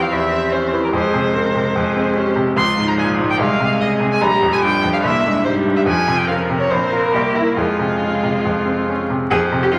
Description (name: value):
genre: quick classical-period movement for piano quartet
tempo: 145 BPM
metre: 4/4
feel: straight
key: F minor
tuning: A4 = 440 Hz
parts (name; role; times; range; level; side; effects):
- rich violin; melody; 0.0-9.8 s; E4 to C6; -23 LUFS; equal; none
- warm cello; second line; 0.0-9.8 s; E4 to Bb4; -24 LUFS; equal; none
- bright grand piano; accompaniment; 0.0-9.8 s; Bb1 to Bb4; -21 LUFS; equal; none
- rich viola; accompaniment; 0.0-9.1 s; F3 to C4; -26 LUFS; equal; none
room: wet recital hall reverb, RT60 1.3 s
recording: vinyl crackle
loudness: -17 LUFS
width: mono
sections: 0.0-9.3 A section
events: none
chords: 0.0 C/E; 0.9 Fm; 2.6 Db; 3.4 Ab/C; 4.2 Gm7/Bb; 5.0 C7; 5.9 F5; 6.7 Bb5; 7.1 C7; 7.6 Fm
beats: 0.12 0.53 | 0.94 1.34 1.75 2.16 | 2.57 2.98 3.40 3.80 | 4.21 4.63 5.04 5.46 | 5.87 6.28 6.70 7.13 | 7.57 8.01 8.45 8.88 | 9.31 9.73